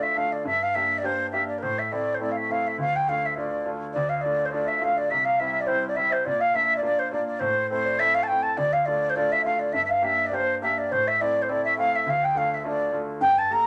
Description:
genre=celtic folk, Celtic reel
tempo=207 BPM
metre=4/4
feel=swing 54% on 8ths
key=D minor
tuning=A4 = 440 Hz
part: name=wooden flute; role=melody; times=0.0-13.7 s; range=Bb4 to Bb5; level=-25 LUFS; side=equal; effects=none
part: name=clear grand piano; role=accompaniment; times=0.0-13.7 s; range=C2 to A4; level=-34 LUFS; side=equal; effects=none
part: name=wooden flute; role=second line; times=3.9-13.7 s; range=C5 to Bb5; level=-33 LUFS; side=equal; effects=none
room=wet studio reverb, RT60 0.5 s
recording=none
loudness=-24 LUFS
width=mono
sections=0.0-3.9 A section; 3.9-13.2 A section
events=none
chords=0.5 Gm; 1.6 Am; 2.8 Dm; 5.1 C; 6.3 Bb; 7.4 Am; 8.6 Dm; 9.7 Gm; 10.9 Am; 12.1 Dm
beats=0.17 | 0.46 0.75 1.04 1.33 | 1.62 1.91 2.20 2.49 | 2.78 3.07 3.36 3.65 | 3.94 4.23 4.52 4.81 | 5.10 5.39 5.68 5.97 | 6.26 6.55 6.84 7.13 | 7.42 7.71 8.00 8.29 | 8.58 8.87 9.16 9.45 | 9.74 10.03 10.32 10.61 | 10.90 11.19 11.48 11.77 | 12.06 12.35 12.64 12.93 | 13.22 13.51

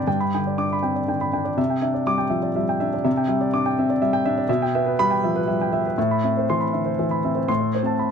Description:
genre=neoclassical minimalist piano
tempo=117-128 BPM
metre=3/4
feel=rubato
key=A minor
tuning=A4 = 440 Hz
part: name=warm grand piano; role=solo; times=0.0-8.1 s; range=G2 to D6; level=-20 LUFS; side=equal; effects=none
room=light reverb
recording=close, detailed microphones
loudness=-20 LUFS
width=side -6 dB against mid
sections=0.0-7.5 A section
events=none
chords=0.0 G; 1.6 Cadd9; 4.5 Em/B; 6.0 Amadd9; 7.5 Am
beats=| 0.07 0.58 1.08 | 1.58 2.08 2.57 | 3.06 3.53 4.00 | 4.48 4.96 5.46 | 5.96 6.47 6.98 | 7.49 7.98

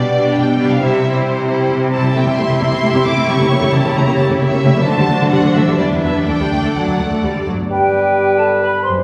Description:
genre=classical, dramatic, fast romantic movement for symphony orchestra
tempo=132 BPM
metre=3/4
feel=rubato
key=G major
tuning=A4 = 439 Hz
part: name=rich symphonic violin section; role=melody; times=0.0-7.2 s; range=C5 to D6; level=-25 LUFS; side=equal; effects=none
part: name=warm symphonic violin section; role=second line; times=0.0-7.5 s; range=E4 to E5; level=-22 LUFS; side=equal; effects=none
part: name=rich symphonic viola section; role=accompaniment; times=0.0-7.6 s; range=F#3 to E4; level=-21 LUFS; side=equal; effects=none
part: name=concert harp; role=arpeggios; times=0.0-9.0 s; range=F#2 to D5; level=-22 LUFS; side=equal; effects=none
part: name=rich symphonic cello section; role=bass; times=0.0-7.6 s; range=D2 to D3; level=-21 LUFS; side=equal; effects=none
part: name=clear oboe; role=second line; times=7.7-9.0 s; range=B4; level=-23 LUFS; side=equal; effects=none
part: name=dark clarinet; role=second line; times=7.7-9.0 s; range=G4 to C5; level=-22 LUFS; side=equal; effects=none
part: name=large flute ensemble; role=second line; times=7.7-8.9 s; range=G5 to C6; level=-20 LUFS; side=equal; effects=none
part: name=mellow bassoon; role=accompaniment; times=7.7-9.0 s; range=G3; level=-19 LUFS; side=equal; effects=none
room=wet recital hall reverb, RT60 1.5 s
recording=heard from further back in the room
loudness=-15 LUFS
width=mono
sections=0.0-7.7 A section; 7.7-9.0 B section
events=none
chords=0.0 G/B; 0.8 C; 2.2 Am7/C; 3.5 C#dim7; 4.9 D7; 5.8 Em7; 6.3 D; 7.7 G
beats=0.37 | 0.82 1.26 1.71 | 2.16 2.60 3.05 | 3.50 3.96 4.41 | 4.86 5.32 5.78 | 6.27 6.75 7.23 | 7.70 8.16 8.61

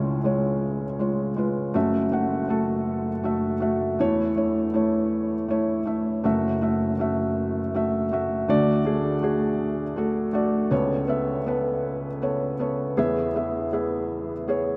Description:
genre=folk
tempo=54 BPM (dotted quarters)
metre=6/8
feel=straight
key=F# minor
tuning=A4 = 440 Hz
part: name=felt-muted upright piano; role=solo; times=0.0-14.8 s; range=F#1 to F#5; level=-25 LUFS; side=equal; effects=none
room=wet cathedral reverb, RT60 5.7 s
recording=in a vast, echoing space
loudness=-25 LUFS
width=mono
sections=0.0-6.2 A section; 6.2-14.8 B section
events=none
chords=0.0 C#; 1.8 F#m7; 4.0 A/E; 6.2 F#m7; 8.5 D; 10.7 Aadd9/C#; 13.0 E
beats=0.63 | 1.75 2.87 | 3.99 5.11 | 6.25 7.37 | 8.49 9.61 | 10.72 11.85 | 12.98 14.11

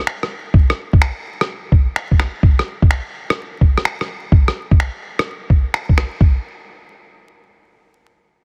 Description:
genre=future garage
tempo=127 BPM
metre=4/4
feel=swing 67% on 16ths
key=none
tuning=none
part: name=electronic finger snaps and rim click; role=drums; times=0.1-6.1 s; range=none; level=-24 LUFS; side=equal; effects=soft clipping on snare
part: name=electronic kick drum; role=drums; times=0.5-6.3 s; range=none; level=-14 LUFS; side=equal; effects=none
room=digital ambience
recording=dense, heavily limited modern master, vinyl crackle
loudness=-17 LUFS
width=mono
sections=0.0-6.2 A section; 6.2-8.4 B section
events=none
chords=none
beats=0.07 | 0.54 1.01 1.49 1.96 | 2.43 2.90 3.38 3.85 | 4.32 4.79 5.26 5.74 | 6.21

